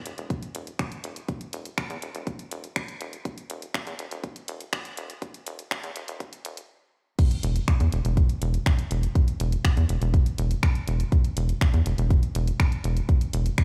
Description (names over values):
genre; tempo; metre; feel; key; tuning
melodic techno; 122 BPM; 4/4; straight; unclear; A4 = 441 Hz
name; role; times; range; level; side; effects
tight sequencer bass; bass; 0.1-13.5 s; E1 to E2; -28 LUFS; equal; sidechain pumping, high-pass filter
punchy analog drum machine; drums; 0.1-13.6 s; crash cymbal, finger snaps, hi-hat; -36 LUFS; equal; sidechain pumping on hats, sidechain pumping on cymbals
electronic kick drum; drums; 0.3-13.6 s; none; -24 LUFS; equal; none
room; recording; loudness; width
little or no reverb; played on a big sound system in a bare room, large studio reverb, high-pass filter; -26 LUFS; mono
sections
0.0-7.2 A section; 7.2-13.6 B section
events
build-up 0.0-7.2; filter sweep 0.0-7.2; stop 6.7-7.2; drop 7.2-13.6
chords
none